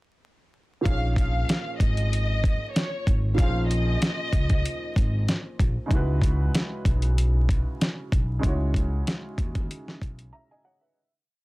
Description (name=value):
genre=hip hop, boom-bap hip-hop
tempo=95 BPM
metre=4/4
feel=swing 55% on 16ths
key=Bb minor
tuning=A4 = 441 Hz
part: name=warm upright piano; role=accompaniment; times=0.8-11.1 s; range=Bb2 to Bb5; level=-33 LUFS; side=right 1 dB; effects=high-pass filter, low-pass filter
part: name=warm studio violin section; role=melody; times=0.9-5.2 s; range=Db5 to F5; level=-32 LUFS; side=left 1 dB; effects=high-pass filter, low-pass filter
part: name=upright bass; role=bass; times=0.9-10.3 s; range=Ab1 to Eb2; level=-25 LUFS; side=equal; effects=none
part: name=dusty soul sampler-style drum kit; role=drums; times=0.9-10.3 s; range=hi-hat, kick drum, snare drum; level=-24 LUFS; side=equal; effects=none
room=little or no reverb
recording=dense, heavily limited modern master, vinyl crackle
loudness=-22 LUFS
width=side -20 dB against mid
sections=0.9-11.0 hook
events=fade-out 8.4-11.0; break 10.3-11.0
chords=0.9 Bbm11; 5.9 Dbm11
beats=| 0.85 1.49 2.12 2.75 | 3.38 4.01 4.64 5.28 | 5.91 6.54 7.17 7.80 | 8.43 9.06 9.70 10.33